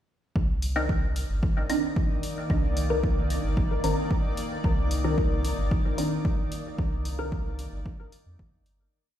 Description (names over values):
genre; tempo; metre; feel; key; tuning
dub techno; 112 BPM; 4/4; straight; C minor; A4 = 440 Hz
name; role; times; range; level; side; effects
granular cloud pad; sustained chords; 1.2-8.9 s; Eb3 to D5; -34 LUFS; equal; built-in reverb, sidechain pumping
soft dub sub bass; bass; 0.4-8.9 s; G1 to F2; -28 LUFS; equal; sidechain pumping
electronic kick drum; drums; 0.4-8.5 s; none; -26 LUFS; equal; overdrive
drifting glass-harmonics texture; texture; 1.1-8.9 s; Eb4; -40 LUFS; left 2 dB; chorus, built-in reverb, sidechain pumping
electronic hi-hat; drums; 0.6-8.8 s; none; -40 LUFS; left 1 dB; overdrive
filtered dub chord stab; stabs; 0.8-7.4 s; Eb3 to Bb4; -30 LUFS; left 1 dB; phaser, sidechain pumping, dub echo
room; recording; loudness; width
light reverb, digital ambience; played on a big sound system in a bare room, stone room reverb; -24 LUFS; side -11 dB against mid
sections
0.4-8.9 groove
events
filter sweep on synth stab 0.4-8.9; fade-out 6.1-8.9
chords
0.4 Cm9